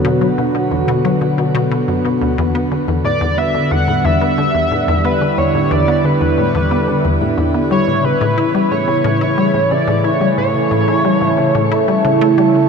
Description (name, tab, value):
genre	ambient, sequencer-driven space music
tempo	90 BPM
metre	4/4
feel	straight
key	E dorian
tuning	A4 = 439 Hz
part	sweeping resonant pad	sustained chords	0.0-12.7 s	C#3 to B4	-16 LUFS	right 2 dB	chorus, phaser, shimmer reverb
part	resonant blip pluck	riff	0.0-12.4 s	D2 to E4	-18 LUFS	left 3 dB	chorus, shimmer reverb, analog delay
part	pulse-width lead	melody	3.0-12.7 s	B4 to F#5	-18 LUFS	equal	chorus, shimmer reverb, analog delay
room	wet huge ambient reverb, RT60 8.1 s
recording	none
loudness	-13 LUFS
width	side -5 dB against mid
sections	0.0-12.7 A section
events	none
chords	0.0 Bm; 2.4 Em7; 7.7 A